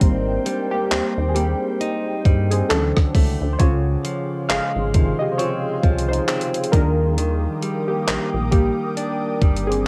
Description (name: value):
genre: contemporary R&B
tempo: 67 BPM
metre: 4/4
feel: swing 58% on 16ths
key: Eb major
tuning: A4 = 440 Hz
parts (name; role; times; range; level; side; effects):
- warm analog keys; accompaniment; 0.0-9.9 s; C3 to F5; -26 LUFS; equal; chorus
- ethereal airy pad; sustained chords; 0.0-9.8 s; Ab4 to Eb6; -32 LUFS; equal; ensemble chorus, built-in reverb
- direct-recorded clean electric guitar; arpeggios; 0.0-9.9 s; Db3 to Eb4; -29 LUFS; equal; analog delay
- rubbery square bass; bass; 0.0-9.9 s; G1 to G2; -25 LUFS; equal; none
- gated 80s digital drum machine; drums; 0.0-9.9 s; handclaps, hi-hat, kick drum, rim click; -21 LUFS; equal; gated reverb, cassette tape
room: digital ambience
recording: home recording on cassette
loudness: -20 LUFS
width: mono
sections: 0.0-9.9 A section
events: synth keys solo 0.0-9.9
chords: 0.0 Abmaj7; 2.7 Dmaj7; 3.6 Dbmaj7; 6.7 Ebmaj7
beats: | 0.01 0.91 1.80 2.70 | 3.60 4.49 5.39 6.28 | 7.18 8.07 8.97 9.87